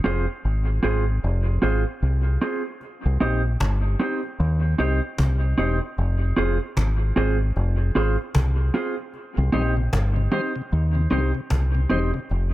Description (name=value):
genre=dub reggae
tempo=76 BPM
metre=4/4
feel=swing 60% on 16ths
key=C minor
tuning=A4 = 443 Hz
part: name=mellow electric guitar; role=accompaniment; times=0.0-12.2 s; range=C4 to C5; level=-26 LUFS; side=right 2 dB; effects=dub echo
part: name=deep dub fingered electric bass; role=bass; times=0.1-12.5 s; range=E1 to Eb2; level=-21 LUFS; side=equal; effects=none
part: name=cajon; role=drums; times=2.8-12.4 s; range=none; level=-27 LUFS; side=equal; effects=none
part: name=mellow tonewheel organ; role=accompaniment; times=9.4-12.2 s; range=C3 to C4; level=-30 LUFS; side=left 4 dB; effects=slow rotary speaker
room=digital ambience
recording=none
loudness=-20 LUFS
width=side -16 dB against mid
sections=0.0-12.5 A section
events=break 0.0-9.1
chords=0.0 Fm; 2.8 Cm; 6.0 Fm; 9.1 Cm